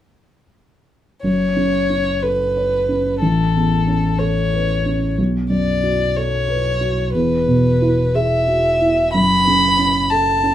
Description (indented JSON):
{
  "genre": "neoclassical piano and strings",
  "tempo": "61 BPM (dotted quarters)",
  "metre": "6/8",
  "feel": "rubato",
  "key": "F# minor",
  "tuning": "A4 = 441 Hz",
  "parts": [
    { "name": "dark violin", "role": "melody", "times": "1.2-10.5 s", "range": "A4 to B5", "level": "-18 LUFS", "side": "left 1 dB", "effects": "none" },
    { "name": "felt-muted upright piano", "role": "accompaniment", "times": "1.2-10.5 s", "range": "A1 to C#5", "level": "-18 LUFS", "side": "right 1 dB", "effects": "none" },
    { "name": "sub bass with octave", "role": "bass", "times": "1.2-10.5 s", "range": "E1 to B1", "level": "-24 LUFS", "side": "left 1 dB", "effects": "none" }
  ],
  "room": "moderate studio ambience, RT60 0.5 s",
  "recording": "rough home demo mix, small room ambience",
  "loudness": "-15 LUFS",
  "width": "side -12 dB against mid",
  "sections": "1.2-10.5 A section",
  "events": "none",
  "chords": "1.2 F#m; 3.2 Aadd9; 5.2 Bm7; 7.1 Eadd9; 9.1 F#m"
}